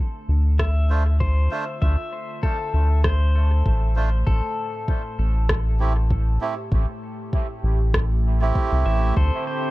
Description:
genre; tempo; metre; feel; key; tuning
ambient dub; 98 BPM; 4/4; swing 55% on 16ths; D minor; A4 = 440 Hz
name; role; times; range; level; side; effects
warm analog pad; sustained chords; 0.0-9.7 s; A2 to E5; -36 LUFS; right 2 dB; chorus
round analog bass; bass; 0.3-9.3 s; A1 to D2; -19 LUFS; equal; tube saturation
pedal steel guitar; arpeggios; 0.6-9.7 s; A4 to E5; -31 LUFS; left 3 dB; dub echo
electronic kick drum; drums; 0.6-9.3 s; none; -23 LUFS; equal; none
electronic rim click; drums; 0.6-8.1 s; none; -27 LUFS; equal; dub echo
melodica; stabs; 0.9-9.1 s; A3 to C5; -30 LUFS; right 4 dB; dub echo
drifting glass-harmonics texture; texture; 9.3-9.7 s; C4 to C5; -28 LUFS; right 2 dB; chorus, built-in reverb
room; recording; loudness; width
digital ambience; dark, warm production; -19 LUFS; side -18 dB against mid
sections
0.0-9.7 A section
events
fade-in on analog synth pad 0.0-9.7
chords
0.0 Dm7; 4.3 Am7; 9.2 D7(no3)

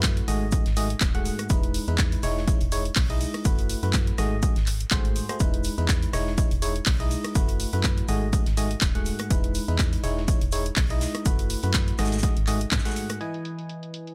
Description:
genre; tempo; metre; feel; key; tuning
piano house; 123 BPM; 4/4; swing 55% on 16ths; E major; A4 = 440 Hz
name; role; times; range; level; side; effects
barking FM electric piano; riff; 0.0-14.1 s; G#2 to G#5; -33 LUFS; equal; chorus, cassette tape, sidechain pumping
organ-like FM bass; bass; 0.0-12.8 s; D#1 to G#2; -30 LUFS; equal; sidechain pumping
big rock drum kit; drums; 0.0-13.2 s; hi-hat, shaker, snare drum; -42 LUFS; equal; sidechain pumping on hats, high-pass filter on hats, high-pass filter on snare, sidechain pumping on perc, high-pass filter on perc, high-pass filter on room
electronic kick drum; drums; 0.0-12.8 s; none; -27 LUFS; equal; none
house drum kit; drums; 0.0-14.1 s; handclaps, hi-hat, rim click; -33 LUFS; equal; low-pass filter on hats, low-pass filter on snare
room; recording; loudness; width
small room ambience; none; -25 LUFS; mono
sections
0.0-13.2 A section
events
band accent 12.7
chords
0.3 G#5; 1.5 Emaj7; 3.5 B7sus4/F#; 4.2 G#7b9; 5.4 Emaj7; 7.4 B7sus4/F#; 8.1 G#5; 9.3 Emaj7; 11.3 B7sus4/F#; 12.0 G#5; 13.2 Emaj7

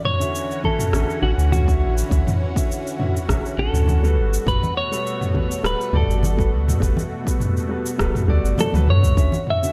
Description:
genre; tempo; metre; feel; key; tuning
sunset chillout; 102 BPM; 4/4; straight; D major; A4 = 440 Hz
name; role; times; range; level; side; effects
clean electric guitar; melody; 0.0-9.7 s; F#4 to E5; -27 LUFS; equal; tape echo
lush unison pad; sustained chords; 0.0-9.7 s; B2 to F#4; -33 LUFS; equal; chorus, phaser
deep house drum kit; drums; 0.0-9.7 s; cabasa, rim click, toms; -27 LUFS; equal; overdrive
warm concert grand piano; accompaniment; 0.2-9.7 s; D3 to F#5; -30 LUFS; equal; tape echo
electronic kick drum; drums; 0.6-9.3 s; none; -26 LUFS; equal; overdrive
congas; percussion; 0.6-9.4 s; none; -30 LUFS; equal; none
warm sub bass; bass; 0.9-9.3 s; D1 to G2; -21 LUFS; equal; none
room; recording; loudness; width
light reverb; none; -20 LUFS; mono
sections
0.0-9.2 A section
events
drum fill 8.6-9.2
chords
0.0 Dmaj9; 4.2 Gmaj9; 9.2 Dmaj9

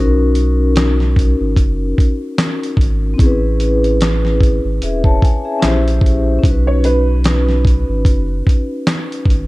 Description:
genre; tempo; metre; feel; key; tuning
lo-fi hip hop; 74 BPM; 4/4; swing 56% on 16ths; B major; A4 = 439 Hz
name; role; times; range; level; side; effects
vibraphone with soft mallets; accompaniment; 0.0-9.5 s; C4 to A5; -18 LUFS; left 2 dB; cassette tape
warm sub bass; bass; 0.0-9.5 s; E1 to B1; -16 LUFS; equal; none
dusty soul sampler-style drum kit; drums; 0.4-9.5 s; handclaps, hi-hat, kick drum, snare drum; -14 LUFS; equal; none
felt-muted upright piano; melody; 6.7-8.2 s; B4 to C#5; -24 LUFS; right 4 dB; none
room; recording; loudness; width
light reverb, digital ambience; dark, warm production; -12 LUFS; side -20 dB against mid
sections
0.0-9.5 A section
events
none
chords
0.0 Bmaj9; 3.2 Amaj7; 5.6 A#dim7; 6.4 Badd9

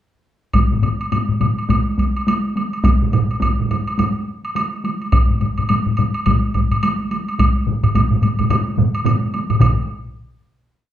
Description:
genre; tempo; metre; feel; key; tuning
japanese traditional, taiko drum ensemble; 106 BPM; 4/4; swing 60% on 16ths; none; none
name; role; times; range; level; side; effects
solo taiko drums; percussion; 0.5-9.9 s; none; -19 LUFS; equal; none
taiko ensemble; percussion; 0.5-9.9 s; none; -22 LUFS; right 1 dB; none
taiko ensemble; percussion; 0.5-10.1 s; none; -19 LUFS; left 3 dB; none
woodblock; percussion; 0.5-9.9 s; none; -24 LUFS; right 1 dB; none
taiko ensemble; percussion; 2.8-10.1 s; none; -20 LUFS; right 4 dB; none
room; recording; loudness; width
wet large studio reverb, RT60 0.8 s; band playing live in one room; -16 LUFS; side -11 dB against mid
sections
0.5-9.6 A section; 9.6-10.9 final hit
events
speeding up 0.5-10.9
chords
none

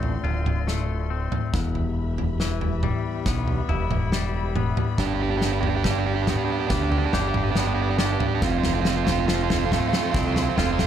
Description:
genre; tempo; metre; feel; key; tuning
post-rock; 70 BPM; 4/4; straight; unclear; A4 = 435 Hz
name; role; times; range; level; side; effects
dark studio string section; sustained chords; 0.0-10.9 s; F4 to C6; -36 LUFS; left 4 dB; none
twangy electric guitar; arpeggios; 0.0-10.9 s; D2 to G4; -30 LUFS; left 7 dB; digital delay
growling picked electric bass; bass; 0.0-10.9 s; D1 to D2; -26 LUFS; equal; overdrive
loose indie drum kit; drums; 0.0-10.9 s; kick drum, snare drum, toms; -26 LUFS; equal; none
crunchy overdriven guitar; riff; 5.0-10.9 s; C4 to G4; -25 LUFS; right 10 dB; none
room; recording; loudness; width
light reverb, small room ambience; dark, warm production; -21 LUFS; side -10 dB against mid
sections
0.0-10.9 A section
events
build-up 0.0-10.9; drum fill 0.0-10.9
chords
0.0 Dm7; 1.5 Em; 5.0 G7; 8.4 F

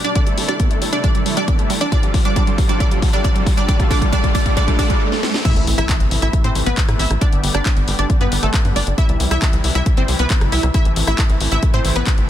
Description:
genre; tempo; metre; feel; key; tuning
uplifting trance; 136 BPM; 4/4; straight; A minor; A4 = 437 Hz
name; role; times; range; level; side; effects
wide unison pluck; melody; 0.0-12.2 s; A3 to E5; -22 LUFS; equal; analog chorus, sidechain pumping, ping-pong delay
tight sequenced synth; arpeggios; 0.0-5.0 s; G3 to B3; -25 LUFS; right 7 dB; chorus, sidechain pumping, ping-pong delay
house drum kit; drums; 0.0-12.3 s; crash cymbal, handclaps, hi-hat, rim click, snare drum; -24 LUFS; left 2 dB; sidechain pumping on hats, sidechain pumping on cymbals
riser, swell and impact; sound effects; 0.0-7.2 s; none; -26 LUFS; right 1 dB; none
filtered supersaw swell; sustained chords; 0.2-12.3 s; C3 to A4; -26 LUFS; equal; sidechain pumping
electronic kick drum; drums; 0.2-12.2 s; none; -16 LUFS; equal; none
tight sequencer bass; bass; 5.6-12.2 s; G1 to A2; -19 LUFS; equal; sidechain pumping
room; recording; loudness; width
light reverb, digital ambience; dense, heavily limited modern master; -14 LUFS; side -11 dB against mid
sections
0.0-5.5 A section; 5.5-12.3 B section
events
build-up 0.0-5.5; drum fill 0.0-5.0, 5.1-5.5; riser 0.0-5.5; filter sweep on synth arpeggio sound 0.0-5.5; swell 4.6-5.5; stop 5.0-5.5; drop 5.5-12.3; impact 5.5-7.2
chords
0.2 Am; 1.9 Fadd9; 3.7 Dm; 5.5 Am; 7.2 G; 9.0 C; 10.7 Am

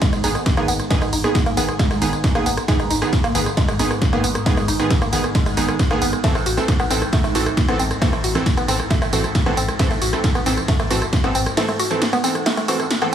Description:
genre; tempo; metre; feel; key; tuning
driving peak-time techno; 135 BPM; 4/4; straight; unclear; A4 = 439 Hz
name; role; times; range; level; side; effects
woody wave-folded pluck; riff; 0.0-13.1 s; G#3 to F#4; -24 LUFS; left 1 dB; chorus, sidechain pumping, digital delay
overtone-sweeping drone; drone; 0.0-13.1 s; G#2; -28 LUFS; equal; chorus, built-in reverb, phaser, sidechain pumping
electronic kick drum; drums; 0.0-11.2 s; none; -19 LUFS; equal; none
punchy analog drum machine; drums; 0.0-13.1 s; hi-hat, ride cymbal, rim click, snare drum, tambourine; -23 LUFS; right 1 dB; none
warm sub bass; bass; 0.1-11.5 s; G#1 to A1; -27 LUFS; equal; sidechain pumping, low-pass filter
supersaw stab; stabs; 0.2-13.1 s; D#3 to A4; -23 LUFS; right 3 dB; cassette tape, sidechain pumping, digital delay
room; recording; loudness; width
light reverb, digital ambience; small room reverb; -16 LUFS; side -9 dB against mid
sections
0.0-13.1 A section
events
kick drops out 11.6-13.1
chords
0.0 G#m; 6.2 Am

